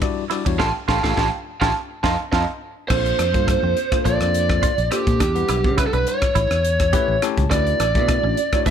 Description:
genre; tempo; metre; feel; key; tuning
electric jazz fusion; 104 BPM; 4/4; swing 53% on 16ths; unclear; A4 = 440 Hz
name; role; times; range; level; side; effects
bell-like tine electric piano; accompaniment; 0.0-8.7 s; G3 to A5; -26 LUFS; left 14 dB; none
clean electric guitar; stabs; 0.0-8.7 s; A3 to G4; -28 LUFS; right 11 dB; analog chorus
crisp fusion drum kit; drums; 0.0-8.7 s; crash cymbal, hi-hat, kick drum, ride cymbal, rim click, snare drum; -23 LUFS; equal; none
fingered electric bass; bass; 0.5-8.7 s; A1 to Db3; -23 LUFS; equal; none
lead guitar through a small cranked amp; melody; 0.6-8.7 s; G4 to A5; -21 LUFS; right 3 dB; overdrive
archtop guitar, miked and amplified; second line; 0.6-2.4 s; Eb5 to A5; -31 LUFS; right 9 dB; none
room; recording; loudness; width
light reverb; none; -17 LUFS; side -8 dB against mid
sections
0.0-2.9 A section; 2.9-8.7 B section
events
band accent 0.6-2.9; tine electric piano fill 6.6-7.5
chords
0.0 Em9; 0.6 Aaug7; 1.7 F7; 2.9 Bbmaj9; 5.2 Em9; 6.4 A7; 7.5 D69

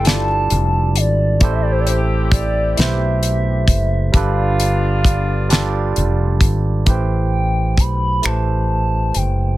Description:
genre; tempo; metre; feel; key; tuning
slow six-eight R&B; 44 BPM (dotted quarters); 6/8; straight; A minor; A4 = 440 Hz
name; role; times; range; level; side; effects
gliding portamento lead; melody; 0.0-9.6 s; C5 to B5; -22 LUFS; equal; chorus
barky tine electric piano; accompaniment; 0.0-9.6 s; G3 to D5; -23 LUFS; right 6 dB; overdrive
mellow horn section; stabs; 0.0-6.4 s; A3 to A4; -28 LUFS; left 2 dB; none
mellow fretless electric bass; bass; 0.0-9.6 s; F1 to B1; -18 LUFS; equal; ensemble chorus
damped 70s drum kit; drums; 0.0-9.4 s; finger snaps, hi-hat, kick drum, snare drum; -15 LUFS; equal; none
room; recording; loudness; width
little or no reverb; none; -14 LUFS; side -16 dB against mid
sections
0.0-6.9 A section; 6.9-9.6 B section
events
none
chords
0.0 G13; 1.4 Am9; 4.1 G9; 6.9 Am9

